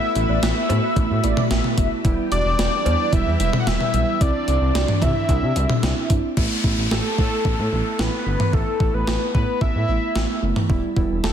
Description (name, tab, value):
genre	synth-pop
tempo	111 BPM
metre	4/4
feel	straight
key	unclear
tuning	A4 = 440 Hz
part	fat analog lead	melody	0.0-11.3 s	A4 to F#5	-25 LUFS	left 1 dB	phaser, ping-pong delay, shimmer reverb
part	mellow synth brass	second line	0.0-1.9 s	D5 to E5	-29 LUFS	left 1 dB	chorus, ping-pong delay, shimmer reverb
part	muted felt-like synth keys	accompaniment	0.0-11.3 s	G3 to G4	-26 LUFS	right 4 dB	chorus, shimmer reverb
part	ensemble organ-string	sustained chords	0.0-6.3 s	E3 to B4	-29 LUFS	equal	ensemble chorus, shimmer reverb
part	smooth gliding synth bass	bass	0.2-11.3 s	E1 to C3	-23 LUFS	equal	none
part	gated 80s digital drum machine	drums	0.2-11.3 s	cowbell, crash cymbal, hi-hat, kick drum, snare drum, toms	-22 LUFS	equal	gated reverb, gated reverb snare, overdrive
part	downlifter	sound effects	6.4-10.7 s	none	-31 LUFS	equal	none
room	light reverb, digital ambience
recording	dense, heavily limited modern master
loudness	-18 LUFS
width	side -9 dB against mid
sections	0.0-6.4 A section; 6.4-11.3 B section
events	none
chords	0.0 Asus2; 2.0 Em; 4.2 Cadd9; 6.4 Asus2; 10.7 Em